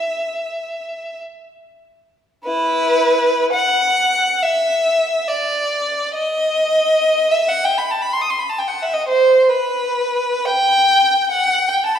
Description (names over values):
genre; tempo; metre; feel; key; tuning
classical, free, expressive piece for unaccompanied violin; 40-74 BPM; 4/4; rubato; E minor; A4 = 440 Hz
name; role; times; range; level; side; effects
rich violin; solo; 0.0-12.0 s; E4 to D#6; -15 LUFS; equal; none
room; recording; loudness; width
wet scoring stage reverb, RT60 1.9 s; heard from further back in the room; -15 LUFS; side -9 dB against mid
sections
0.0-2.4 A section; 2.4-12.0 A section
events
none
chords
none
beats
0.13 1.19 | 2.44 3.49 4.38 5.25 | 6.10 6.96 7.80 8.64 | 9.47 10.41 11.26